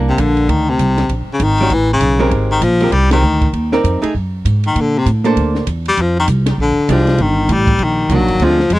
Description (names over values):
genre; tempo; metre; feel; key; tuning
jazz, small-group swing and bop; 197 BPM; 4/4; swing 61% on 8ths; unclear; A4 = 440 Hz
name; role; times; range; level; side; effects
archtop guitar, miked and amplified; accompaniment; 0.0-8.6 s; D3 to D5; -17 LUFS; right 2 dB; none
upright bass; bass; 0.0-8.8 s; G1 to Bb2; -15 LUFS; right 1 dB; none
bright baritone saxophone; melody; 0.1-8.8 s; C3 to Ab3; -15 LUFS; left 2 dB; tape echo
compact cocktail drum kit; drums; 0.2-8.8 s; hi-hat, kick drum, ride cymbal, snare drum; -21 LUFS; equal; none
room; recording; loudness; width
little or no reverb; dry, close 1970s-style studio recording; -12 LUFS; side -17 dB against mid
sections
0.0-8.8 A section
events
band accent 3.1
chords
0.0 Csus2; 1.1 Bbm7; 1.7 A9; 2.3 Abmaj9; 3.5 Cm9; 4.1 Ebmadd11/Gb (rootless); 4.8 Bbmaj9; 6.0 F5; 6.6 Bb13; 7.2 Ebmaj7